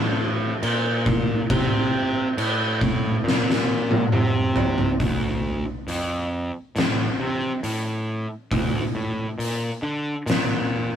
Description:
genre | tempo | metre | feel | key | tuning
stoner and doom metal | 68 BPM | 4/4 | straight | D minor | A4 = 441 Hz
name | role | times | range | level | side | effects
fuzz picked electric bass | bass | 0.0-10.9 s | D2 to D3 | -25 LUFS | equal | overdrive
oversized low-tuned drum kit | drums | 0.6-10.5 s | crash cymbal, hi-hat, kick drum, snare drum, toms | -23 LUFS | equal | none
room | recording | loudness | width
light reverb | rough rehearsal-room recording | -21 LUFS | side -9 dB against mid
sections
0.0-5.0 A section; 5.0-11.0 B section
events
drum fill 3.2-5.0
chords
none

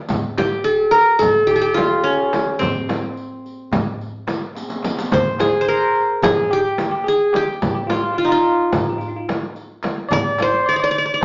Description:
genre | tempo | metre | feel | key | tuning
Turkish makam ensemble | 216 BPM (eighths) | 9/8 | straight | C makam hicaz, C makam ussak from 5.1 s | A4 = 440 Hz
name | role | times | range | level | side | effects
darbuka | percussion | 0.1-11.2 s | none | -36 LUFS | equal | none
frame drum | percussion | 0.1-11.2 s | none | -25 LUFS | equal | none
riq | percussion | 0.1-11.2 s | none | -33 LUFS | equal | none
qanun | melody | 0.4-11.2 s | C4 to D5-30c | -19 LUFS | equal | none
bell-like tine electric piano | second line | 5.1-11.2 s | Eb4 to Eb5 | -26 LUFS | equal | none
room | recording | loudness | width
wet large studio reverb, RT60 0.8 s | nothing above 7.5 kHz | -18 LUFS | mono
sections
0.0-5.1 A section; 5.1-11.2 B section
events
drum fill 4.6-5.1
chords
none

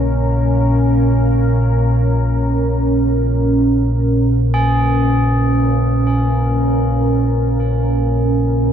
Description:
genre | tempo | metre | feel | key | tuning
dark ambient drone | free time | none | none | unclear | A4 = 440 Hz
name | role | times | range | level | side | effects
deep dark ambient pad | sustained chords | 0.0-8.7 s | Db4 to F5 | -18 LUFS | right 1 dB | chorus, built-in reverb
tubular bells | arpeggios | 0.0-8.7 s | Ab4 | -24 LUFS | equal | ping-pong delay
deep rumbling drone | drone | 0.0-8.7 s | Bb1 to Bb2 | -15 LUFS | equal | built-in reverb
room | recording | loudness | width
wet cathedral reverb, RT60 5.6 s | dark, warm production | -13 LUFS | side -8 dB against mid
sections
0.0-8.7 A section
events
none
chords
0.0 Bbm

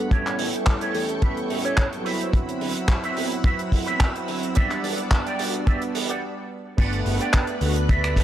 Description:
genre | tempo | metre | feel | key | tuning
nu-disco, nu disco | 108 BPM | 4/4 | swing 53% on 16ths | G major | A4 = 439 Hz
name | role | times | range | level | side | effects
soft octave-layered synth lead | melody | 0.0-1.9 s | A4 to C#5 | -32 LUFS | left 1 dB | chorus, tremolo, analog delay
warm analog pad | accompaniment | 0.0-8.2 s | F#3 to F#5 | -28 LUFS | right 1 dB | chorus, sidechain pumping, tape echo
string machine, full ensemble | sustained chords | 0.0-8.2 s | A4 to F#6 | -33 LUFS | equal | ensemble chorus, vintage 12-bit sampler grit, sidechain pumping
electric guitar with an envelope filter | riff | 0.1-8.2 s | F#4 to G5 | -30 LUFS | right 3 dB | analog chorus, low-pass filter, tape echo
hollow-body short-scale picked electric bass | bass | 0.1-8.2 s | G1 to E2 | -30 LUFS | equal | high-pass filter
damped 70s drum kit | drums | 0.1-8.2 s | crash cymbal, finger snaps, handclaps, hi-hat | -28 LUFS | right 2 dB | none
kick drum | drums | 0.1-8.2 s | none | -19 LUFS | equal | none
room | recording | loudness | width
light reverb, small room reverb | dry, gritty hardware recording | -21 LUFS | side -12 dB against mid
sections
0.0-6.8 A section; 6.8-8.2 B section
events
build-up 0.0-6.8; filter sweep on clean electric guitar 0.0-6.8; stop 6.2-6.8; drop 6.8-8.2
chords
0.1 A7; 2.1 D13; 4.6 Em7; 6.8 Gmaj7

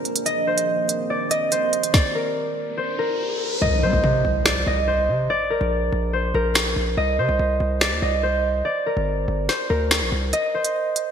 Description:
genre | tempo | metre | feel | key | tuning
hip hop, drill | 143 BPM | 4/4 | half-time | C minor | A4 = 440 Hz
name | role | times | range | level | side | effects
concert harp | melody | 0.0-11.1 s | Bb4 to Eb5 | -22 LUFS | right 1 dB | low-pass filter
deep dark ambient pad | sustained chords | 0.0-1.9 s | Eb3 to Ab4 | -31 LUFS | equal | chorus, built-in reverb
downlifter, riser and impact | sound effects | 2.7-5.3 s | none | -28 LUFS | equal | none
drill drum kit | drums | 0.1-11.1 s | finger snaps, hi-hat, kick drum, snare drum | -22 LUFS | equal | gated reverb
distorted 808-style bass | bass | 3.6-10.3 s | G1 to G3 | -23 LUFS | equal | distortion
room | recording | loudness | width
moderate lush hall reverb, RT60 2.1 s | bright 1980s-style digital production | -19 LUFS | side -8 dB against mid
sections
0.0-3.6 A section; 3.6-11.1 B section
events
riser 2.7-3.6; hi-hats muted 3.6-10.3; impact 3.6-5.3; kick muted 10.3-11.1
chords
0.3 Cm7; 1.9 N.C.; 3.6 C5; 5.3 Bbadd9; 7.0 Cm; 8.7 Gm; 10.3 Cm

